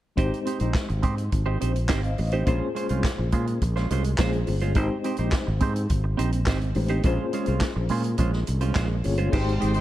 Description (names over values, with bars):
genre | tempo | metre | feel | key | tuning
disco | 105 BPM | 4/4 | straight | Ab major | A4 = 440 Hz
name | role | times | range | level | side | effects
reed electric piano | accompaniment | 0.2-9.8 s | Ab3 to F5 | -31 LUFS | left 4 dB | overdrive, fast tremolo
semi-hollow electric guitar | accompaniment | 0.2-9.8 s | Ab3 to C5 | -30 LUFS | right 6 dB | phaser
fingered electric bass | bass | 0.2-9.8 s | G1 to Bb2 | -25 LUFS | equal | none
vintage drum kit | drums | 0.2-9.8 s | crash cymbal, handclaps, hi-hat, kick drum, snare drum | -27 LUFS | equal | none
warm studio string section | sustained chords | 9.3-9.8 s | Ab3 to C6 | -29 LUFS | equal | none
room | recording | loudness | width
small room reverb | dark, warm production, lossy compression artefacts | -22 LUFS | side -14 dB against mid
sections
0.2-9.3 A section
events
none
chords
0.2 Abmaj7; 2.5 Bbm9; 4.8 Abmaj7; 7.1 Bbm9